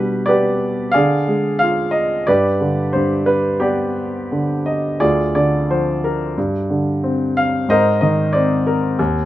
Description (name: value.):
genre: classical, lyrical solo piano.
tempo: 90 BPM.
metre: 4/4.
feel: rubato.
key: unclear.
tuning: A4 = 439 Hz.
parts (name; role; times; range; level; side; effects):
clear grand piano; solo; 0.0-9.3 s; D2 to F5; -15 LUFS; equal; none.
room: light reverb.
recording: close, detailed microphones.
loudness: -15 LUFS.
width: side -14 dB against mid.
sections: 0.0-9.3 A section.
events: none.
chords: 0.0 G/B; 0.9 Ddim; 2.3 G; 5.0 Ddim; 6.4 Gsus4; 7.7 Abadd9.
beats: 0.28 0.94 1.60 | 2.27 2.94 3.62 4.31 | 5.01 5.69 6.37 7.03 | 7.68 8.34 8.99.